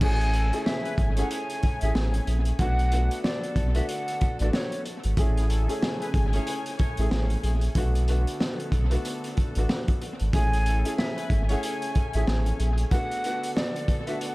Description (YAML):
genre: hip hop, boom-bap hip-hop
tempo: 93 BPM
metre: 4/4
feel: swing 60% on 16ths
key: A major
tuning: A4 = 439 Hz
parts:
  - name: breathy mellow silver concert flute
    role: melody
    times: 0.0-4.8, 10.3-14.3 s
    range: C#5 to G#5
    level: -32 LUFS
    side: equal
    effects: high-pass filter, low-pass filter, dub echo
  - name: dark upright piano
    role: accompaniment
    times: 0.0-14.3 s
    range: A3 to G#4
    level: -33 LUFS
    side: equal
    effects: cassette tape, high-pass filter, low-pass filter, dub echo
  - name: dark studio string section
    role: sustained chords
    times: 0.0-14.3 s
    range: C#3 to G#5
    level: -39 LUFS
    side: left 2 dB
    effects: high-pass filter, low-pass filter
  - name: sub bass with octave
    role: bass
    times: 0.0-12.8 s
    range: G#1 to B1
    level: -24 LUFS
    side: equal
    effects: none
  - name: crunchy breakbeat drum kit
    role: drums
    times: 0.0-14.3 s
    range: crash cymbal, hi-hat, kick drum, snare drum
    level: -28 LUFS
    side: equal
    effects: dub echo
  - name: clear horn section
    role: stabs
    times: 0.2-11.9 s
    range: C#4 to C#5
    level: -42 LUFS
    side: left 1 dB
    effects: high-pass filter, low-pass filter, dub echo
room: small room ambience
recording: echo-heavy mix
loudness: -23 LUFS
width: side -21 dB against mid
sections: 0.0-14.3 A section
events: none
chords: 0.0 Amaj7; 2.6 Bm7; 5.2 Amaj7; 7.8 Bm7; 10.3 Amaj7; 12.9 Bm7